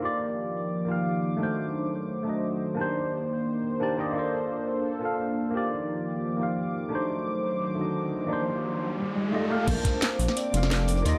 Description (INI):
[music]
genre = liquid drum and bass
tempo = 174 BPM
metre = 4/4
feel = straight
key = Bb major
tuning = A4 = 440 Hz
[part]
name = tine electric piano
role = accompaniment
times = 0.0-11.2 s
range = A3 to A5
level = -32 LUFS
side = equal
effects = overdrive, phaser, digital delay
[part]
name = warm analog pad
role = sustained chords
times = 0.0-11.2 s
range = Eb3 to D6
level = -34 LUFS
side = equal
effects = chorus
[part]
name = riser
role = sound effects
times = 8.1-9.7 s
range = none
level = -36 LUFS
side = equal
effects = none
[part]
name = vibraphone with medium mallets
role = melody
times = 9.3-11.2 s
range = A4 to Eb5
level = -35 LUFS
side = equal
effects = none
[part]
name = dark detuned saw bass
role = bass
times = 9.7-11.1 s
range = F1 to Eb2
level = -27 LUFS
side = equal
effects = none
[part]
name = crunchy breakbeat drum kit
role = drums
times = 9.7-11.1 s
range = hi-hat, snare drum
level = -41 LUFS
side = equal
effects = high-pass filter on hats, small room ambience, high-pass filter on snare, high-pass filter on room
[part]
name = electronic kick drum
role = drums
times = 9.7-9.9 s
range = none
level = -30 LUFS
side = equal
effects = small room ambience
[part]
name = garage drum kit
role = drums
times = 9.7-11.1 s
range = crash cymbal, hi-hat, snare drum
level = -33 LUFS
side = equal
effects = small room ambience
[sound]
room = moderate lush hall reverb, RT60 2.0 s, small room ambience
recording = dark, warm production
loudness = -28 LUFS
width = mono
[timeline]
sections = 0.0-9.7 A section; 9.7-11.2 B section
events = filter sweep on analog synth pad 0.0-9.7; riser 8.1-9.7; drop 9.7-11.2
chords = 0.0 Ebmaj9; 1.4 D7b9; 2.8 Cm9; 4.2 Bbmaj9; 5.5 Ebmaj9; 6.9 D7b9; 8.3 Cm9; 9.0 F13; 9.7 Bbmaj9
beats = | 0.02 0.37 0.71 1.06 | 1.40 1.75 2.09 2.44 | 2.78 3.12 3.47 3.81 | 4.16 4.50 4.85 5.19 | 5.54 5.88 6.23 6.57 | 6.92 7.26 7.61 7.95 | 8.30 8.64 8.99 9.33 | 9.68 10.02 10.37 10.71 | 11.06